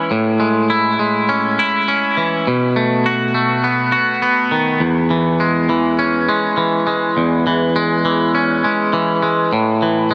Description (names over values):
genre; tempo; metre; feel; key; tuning
rock; 102 BPM; 4/4; straight; E major; A4 = 443 Hz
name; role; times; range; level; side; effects
twangy electric guitar; solo; 0.0-10.1 s; E2 to F#4; -16 LUFS; equal; subtle chorus, tape echo
room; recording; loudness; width
moderate huge ambient reverb, RT60 6.4 s; none; -16 LUFS; mono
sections
0.0-4.8 A section; 4.8-10.1 B section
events
build-up 4.8-10.1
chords
0.1 Amaj7; 2.5 B7; 4.8 E6; 9.5 A5